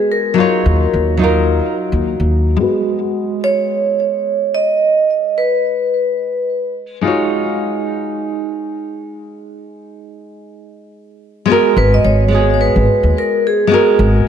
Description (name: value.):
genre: sunset chillout.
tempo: 108 BPM.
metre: 4/4.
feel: swing 57% on 16ths.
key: G# dorian.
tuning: A4 = 440 Hz.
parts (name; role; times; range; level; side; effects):
vibraphone with medium hard mallets; melody; 0.0-6.7, 11.8-14.0 s; G#4 to D#5; -16 LUFS; right 1 dB; ping-pong delay.
nylon-string guitar; accompaniment; 0.0-14.3 s; F#3 to C#5; -16 LUFS; moving between left 2 dB and right 5 dB; auto-pan, vintage 12-bit sampler grit, low-pass filter, ping-pong delay.
upright bass; bass; 0.7-2.6, 11.8-14.2 s; G#1 to D#2; -14 LUFS; equal; none.
room: moderate lush hall reverb, RT60 2.8 s.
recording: none.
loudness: -13 LUFS.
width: side -8 dB against mid.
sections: 0.0-2.6 A section; 2.6-11.5 B section; 11.5-14.3 C section.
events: filter sweep on nylon-string guitar 2.6-11.5.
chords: 0.4 D#m9; 2.6 G#m7; 7.0 D#m11; 11.5 G#m9.